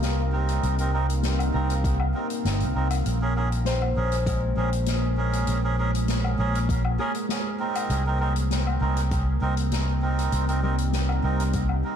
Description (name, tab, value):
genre	ambient dub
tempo	99 BPM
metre	4/4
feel	straight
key	unclear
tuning	A4 = 442 Hz
part	deep dark ambient pad	sustained chords	0.0-12.0 s	G3 to Bb4	-31 LUFS	equal	chorus, built-in reverb
part	concert harp	arpeggios	0.0-12.0 s	G3 to Bb5	-36 LUFS	left 4 dB	dub echo
part	fingered electric bass	bass	0.0-11.8 s	G1 to C2	-24 LUFS	equal	none
part	soft-mallet drum kit	drums	0.0-11.8 s	hi-hat, snare drum, woodblock	-33 LUFS	left 5 dB	dub echo
part	bubbling stepped-filter texture	texture	0.0-3.1 s	F5	-42 LUFS	left 2 dB	none
part	melodica	stabs	0.3-12.0 s	C4 to Bb4	-30 LUFS	right 4 dB	dub echo
part	electronic kick drum	drums	1.8-11.7 s	none	-29 LUFS	equal	none
room	light reverb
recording	none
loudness	-22 LUFS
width	side -8 dB against mid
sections	0.0-3.1 A section; 3.1-12.0 A section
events	none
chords	0.0 Cm7; 3.1 Bbm7; 7.9 Cm7